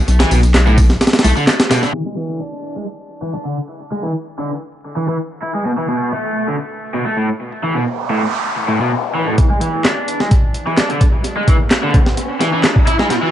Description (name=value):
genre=breakbeat, breaks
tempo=129 BPM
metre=4/4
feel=straight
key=unclear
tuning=A4 = 435 Hz
part: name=saturated sub bass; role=bass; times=0.1-1.3, 9.4-13.3 s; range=B1 to E2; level=-17 LUFS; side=equal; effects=high-pass filter
part: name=breakbeat sampler-style drum kit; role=drums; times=0.1-1.9, 9.4-13.2 s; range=hi-hat, kick drum, snare drum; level=-14 LUFS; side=equal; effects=tape echo
part: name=house drum kit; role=drums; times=0.1-1.9, 9.8-12.7 s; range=handclaps, ride cymbal, tambourine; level=-23 LUFS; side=equal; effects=none
part: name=raw garage guitar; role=riff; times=0.2-13.3 s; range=A2 to E4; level=-19 LUFS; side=equal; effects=overdrive, low-pass filter, tape echo
part: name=noise sweep and riser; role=sound effects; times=7.7-13.3 s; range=none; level=-23 LUFS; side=equal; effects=none
room=light reverb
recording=echo-heavy mix, vinyl crackle, low-pass filter, nothing above 10.7 kHz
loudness=-14 LUFS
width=side -11 dB against mid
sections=0.0-1.9 A section; 1.9-9.4 B section; 9.4-13.3 C section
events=band accent 1.5; filter sweep 1.9-9.4; noise sweep 7.7-9.4; build-up 9.4-13.3; riser 9.4-13.3; filter sweep on overdriven electric guitar 9.4-13.3; drum fill 13.1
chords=0.0 N.C.; 1.9 E7; 5.7 B7(no3); 9.4 E7(no3)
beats=| 0.08 0.55 1.01 1.48 | 1.94 2.41 2.87 3.34 | 3.80 4.27 4.73 5.20 | 5.66 6.13 6.59 7.06 | 7.52 7.99 8.45 8.92 | 9.38 9.85 10.31 10.78 | 11.24 11.71 12.17 12.64 | 13.10